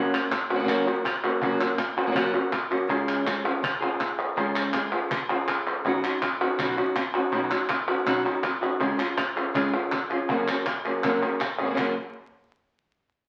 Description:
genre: flamenco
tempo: 162 BPM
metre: 4/4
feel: straight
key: F# major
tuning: A4 = 439 Hz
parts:
  - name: flamenco guitar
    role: melody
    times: 0.0-11.9 s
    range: F#2 to G#4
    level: -29 LUFS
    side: equal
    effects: none
  - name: palmas hand claps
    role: percussion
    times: 0.1-11.9 s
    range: none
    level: -30 LUFS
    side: equal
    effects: none
  - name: cajon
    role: percussion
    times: 0.3-11.9 s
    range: none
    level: -37 LUFS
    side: equal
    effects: none
room: wet studio reverb, RT60 0.8 s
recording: very old 78 rpm record, vinyl crackle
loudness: -26 LUFS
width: mono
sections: 0.0-11.8 A section; 11.8-13.3 B section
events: none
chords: 0.0 F#; 2.9 C#; 5.8 Badd9; 8.8 C#; 10.3 F#add9; 11.8 N.C.

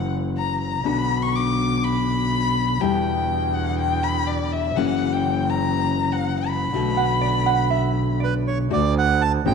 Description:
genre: tango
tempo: 122 BPM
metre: 4/4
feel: rubato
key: B minor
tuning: A4 = 440 Hz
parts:
  - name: dark violin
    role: second line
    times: 0.0-8.2 s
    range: D5 to D6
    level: -25 LUFS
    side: left 4 dB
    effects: none
  - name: nylon-string guitar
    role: accompaniment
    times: 0.0-9.5 s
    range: B2 to F#4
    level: -24 LUFS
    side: left 8 dB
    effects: none
  - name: clear double bass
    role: bass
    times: 0.0-9.5 s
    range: F#1 to E2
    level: -24 LUFS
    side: right 4 dB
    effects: none
  - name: vintage hollow-body jazz guitar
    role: second line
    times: 7.0-8.7 s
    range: D5 to F#5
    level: -25 LUFS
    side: right 11 dB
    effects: none
  - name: bandoneon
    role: melody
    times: 8.2-9.5 s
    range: B4 to A5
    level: -22 LUFS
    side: right 9 dB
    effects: none
room: wet echo chamber reverb, RT60 1.9 s, small room ambience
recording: 1960s-style stereo with parts hard left and right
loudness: -19 LUFS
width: side -6 dB against mid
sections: 0.0-8.7 A section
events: violin solo 0.0-8.7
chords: 0.0 F#7; 0.9 Bm; 2.8 Em7; 4.8 F#7; 6.7 Bm7; 8.7 D

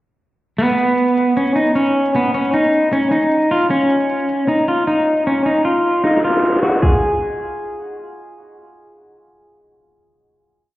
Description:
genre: hip hop, trap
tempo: 154 BPM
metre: 4/4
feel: half-time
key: G# dorian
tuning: A4 = 440 Hz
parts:
  - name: electric guitar at the edge of break-up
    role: melody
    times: 0.6-8.0 s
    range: B3 to G#4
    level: -15 LUFS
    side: equal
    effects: digital delay
  - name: trap drum kit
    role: drums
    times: 0.6-6.9 s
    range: crash cymbal, hi-hat, kick drum, snare drum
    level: -17 LUFS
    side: equal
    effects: none
room: moderate scoring stage reverb, RT60 1.6 s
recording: heard muffled through a wall, stone room reverb, EQ, low-pass filter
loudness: -14 LUFS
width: side -16 dB against mid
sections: 0.6-6.8 breakdown; 6.8-9.9 final note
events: drum fill 6.0-6.8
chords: none

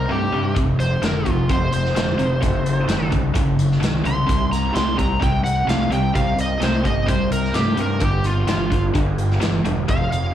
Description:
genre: blues rock power trio and southern rock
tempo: 129 BPM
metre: 4/4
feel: straight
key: C minor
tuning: A4 = 440 Hz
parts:
  - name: overdriven slide guitar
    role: melody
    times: 0.0-10.3 s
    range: F4 to C6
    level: -24 LUFS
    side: right 1 dB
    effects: slapback echo
  - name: overdriven tonewheel organ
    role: sustained chords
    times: 0.0-10.3 s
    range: B3 to Bb4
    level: -34 LUFS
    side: right 4 dB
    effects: none
  - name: tight distorted guitar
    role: riff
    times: 0.0-10.3 s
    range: F2 to A3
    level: -22 LUFS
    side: equal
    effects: distortion, slapback echo
  - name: fuzz fingered electric bass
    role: bass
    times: 0.0-10.3 s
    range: E1 to G2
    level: -24 LUFS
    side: equal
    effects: overdrive
  - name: big rock drum kit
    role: drums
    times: 0.6-10.2 s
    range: hi-hat, kick drum, snare drum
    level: -24 LUFS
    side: equal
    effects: none
room: light reverb, studio reverb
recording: live gig heard through the venue's PA, club reverb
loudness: -17 LUFS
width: side -11 dB against mid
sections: 0.0-10.3 A section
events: none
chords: 0.0 Cm7; 0.6 Fm7; 2.4 F#dim7; 4.3 Cm7; 8.0 G7b9

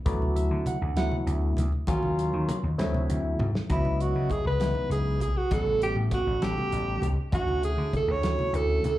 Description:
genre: electric jazz fusion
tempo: 66 BPM (dotted quarters)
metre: 6/8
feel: straight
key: unclear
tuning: A4 = 438 Hz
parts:
  - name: barky tine electric piano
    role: accompaniment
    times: 0.1-8.9 s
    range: F#3 to F#5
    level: -32 LUFS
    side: equal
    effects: medium stereo tremolo, phaser, plate reverb, slapback echo
  - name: vintage slap bass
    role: bass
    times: 0.1-9.0 s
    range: A1 to D#3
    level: -27 LUFS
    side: equal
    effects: none
  - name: damped 70s drum kit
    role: drums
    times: 0.1-9.0 s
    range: hi-hat, kick drum, snare drum, toms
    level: -32 LUFS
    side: equal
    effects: none
  - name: congas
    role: percussion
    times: 0.1-9.0 s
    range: none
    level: -34 LUFS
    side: right 1 dB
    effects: none
  - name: breathy alto saxophone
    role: melody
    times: 3.7-9.0 s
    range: E4 to C#5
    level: -28 LUFS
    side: right 2 dB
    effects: plate reverb, slapback echo, tape echo
room: light reverb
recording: live gig heard through the venue's PA, club reverb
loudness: -24 LUFS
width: side -15 dB against mid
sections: 0.0-3.7 A section; 3.7-9.0 B section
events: drum fill 3.4-3.7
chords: 0.1 D69; 1.9 D#m7; 2.8 D9; 3.7 C#m11; 5.5 A13; 7.3 Dmaj7

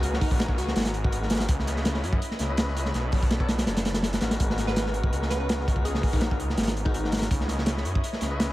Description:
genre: drum and bass, jungle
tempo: 165 BPM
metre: 4/4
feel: swing 53% on 16ths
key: G# minor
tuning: A4 = 440 Hz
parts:
  - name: glassy wavetable pluck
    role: melody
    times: 0.0-1.1, 4.7-7.3 s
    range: D#4 to B4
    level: -36 LUFS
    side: equal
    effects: chorus, cassette tape, dub echo
  - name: lush unison pad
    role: sustained chords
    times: 0.0-8.5 s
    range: B3 to D#5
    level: -36 LUFS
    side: equal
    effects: chorus, vintage 12-bit sampler grit
  - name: tonewheel organ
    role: stabs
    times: 0.0-8.5 s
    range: G#3 to D#5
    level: -36 LUFS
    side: left 4 dB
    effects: overdrive, dub echo
  - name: detuned saw bass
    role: bass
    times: 0.0-8.5 s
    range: F#1 to F#2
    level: -29 LUFS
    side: equal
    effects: none
  - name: crunchy breakbeat drum kit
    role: drums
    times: 0.0-8.5 s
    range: hi-hat, kick drum, snare drum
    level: -26 LUFS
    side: equal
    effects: dub echo
room: small room reverb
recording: echo-heavy mix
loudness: -23 LUFS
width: side -16 dB against mid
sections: 0.0-8.5 A section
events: none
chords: 0.0 G#m9; 1.5 C#m9; 2.9 Bm9; 4.4 G#m9; 7.3 C#m9

